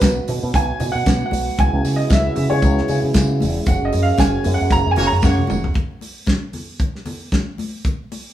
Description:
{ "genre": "disco", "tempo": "115 BPM", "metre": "4/4", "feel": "swing 56% on 16ths", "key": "F# major", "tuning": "A4 = 440 Hz", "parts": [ { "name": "warm baby grand piano", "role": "melody", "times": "0.0-5.7 s", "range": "B4 to A#5", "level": "-22 LUFS", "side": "right 2 dB", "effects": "none" }, { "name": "mellow French horn section", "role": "sustained chords", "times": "0.0-5.7 s", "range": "C#3 to A#4", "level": "-24 LUFS", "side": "right 2 dB", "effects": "none" }, { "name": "fingered electric bass with an envelope filter", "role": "bass", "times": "0.0-5.7 s", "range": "E1 to C#3", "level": "-20 LUFS", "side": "equal", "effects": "none" }, { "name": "damped 70s drum kit", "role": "drums", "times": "0.0-8.3 s", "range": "hi-hat, kick drum, snare drum, toms", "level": "-20 LUFS", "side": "equal", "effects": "none" }, { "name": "congas", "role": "percussion", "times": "0.0-8.3 s", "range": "none", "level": "-31 LUFS", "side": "left 3 dB", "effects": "none" }, { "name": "tambourine", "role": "percussion", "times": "0.0-5.6 s", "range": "none", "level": "-37 LUFS", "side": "right 5 dB", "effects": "none" }, { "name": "warm horn section", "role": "stabs", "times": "5.0-5.6 s", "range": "A#3 to C#5", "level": "-24 LUFS", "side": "equal", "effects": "none" } ], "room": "moderate stone room reverb, RT60 1.3 s", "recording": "band playing live in one room, small room reverb", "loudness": "-16 LUFS", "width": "side -12 dB against mid", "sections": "0.0-5.8 A section; 5.8-8.3 B section", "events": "grand piano solo 0.0-5.8; band accent 3.7-5.8; drum fill 5.2-5.8", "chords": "0.0 B5; 1.6 C#m7; 3.7 F#; 5.8 N.C." }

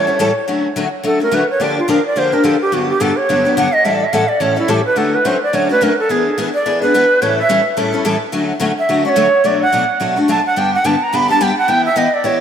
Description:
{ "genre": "jazz", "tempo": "214 BPM", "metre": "4/4", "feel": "swing 58% on 8ths", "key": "D major", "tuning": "A4 = 441 Hz", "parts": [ { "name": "bright reedy shakuhachi", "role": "melody", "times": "0.0-12.4 s", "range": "E4 to B5", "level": "-14 LUFS", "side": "right 2 dB", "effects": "tape echo" }, { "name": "picked steel-string acoustic guitar", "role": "accompaniment", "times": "0.0-12.4 s", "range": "G2 to A4", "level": "-17 LUFS", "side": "left 3 dB", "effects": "ensemble chorus" } ], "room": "wet plate reverb, RT60 2.5 s", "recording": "dreamy mix soaked in reverb", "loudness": "-12 LUFS", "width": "side -8 dB against mid", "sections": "0.5-9.4 A section; 9.4-12.4 A section", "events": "shakuhachi solo 0.5-12.4", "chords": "0.5 Dmaj7; 1.6 Bb6/D; 2.7 Gmaj7; 3.8 A7; 5.0 Dmaj7; 6.1 E7; 7.2 A7; 8.3 Dmaj9; 9.4 Bm7; 10.6 G; 11.7 Em" }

